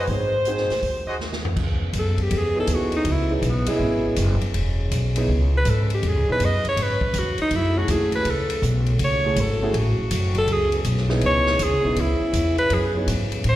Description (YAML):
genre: jazz, big band swing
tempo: 162 BPM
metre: 4/4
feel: swing 66% on 8ths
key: C# minor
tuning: A4 = 440 Hz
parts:
  - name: clear saxophone section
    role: melody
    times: 0.0-1.4 s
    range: B#4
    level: -24 LUFS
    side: left 1 dB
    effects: slapback echo
  - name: clear trumpet section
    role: stabs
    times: 0.0-1.2 s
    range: F#4 to D#5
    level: -32 LUFS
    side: right 1 dB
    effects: slapback echo
  - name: upright bass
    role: bass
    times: 0.0-13.6 s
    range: E1 to A2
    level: -22 LUFS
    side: equal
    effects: none
  - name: warm grand piano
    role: accompaniment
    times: 0.1-13.1 s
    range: A3 to D#5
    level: -27 LUFS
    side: right 2 dB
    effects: slapback echo
  - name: swinging big-band drum kit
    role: drums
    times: 0.1-13.6 s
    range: crash cymbal, hi-hat, kick drum, ride cymbal, snare drum, toms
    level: -30 LUFS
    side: left 1 dB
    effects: none
  - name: dark trombone section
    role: sustained chords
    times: 1.6-13.6 s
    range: C#3 to C#4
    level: -33 LUFS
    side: left 1 dB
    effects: none
  - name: clear alto saxophone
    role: melody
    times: 2.0-13.6 s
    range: G#3 to D#5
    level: -23 LUFS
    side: equal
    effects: slapback echo
room: light reverb, small room ambience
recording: live gig heard through the venue's PA, recital hall reverb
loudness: -19 LUFS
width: side -14 dB against mid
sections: 0.0-1.6 A section; 1.6-13.6 B section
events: drum fill 1.2-1.6; alto saxophone solo 1.6-13.6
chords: 0.1 G#7; 1.6 C#m7; 7.5 F#m7; 10.5 C#m7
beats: | 0.08 0.46 0.83 1.20 | 1.57 1.94 2.31 2.69 | 3.06 3.43 3.80 4.17 | 4.54 4.91 5.29 5.66 | 6.03 6.40 6.77 7.14 | 7.51 7.88 8.26 8.63 | 9.00 9.37 9.74 10.11 | 10.48 10.85 11.22 11.60 | 11.97 12.34 12.71 13.08 | 13.45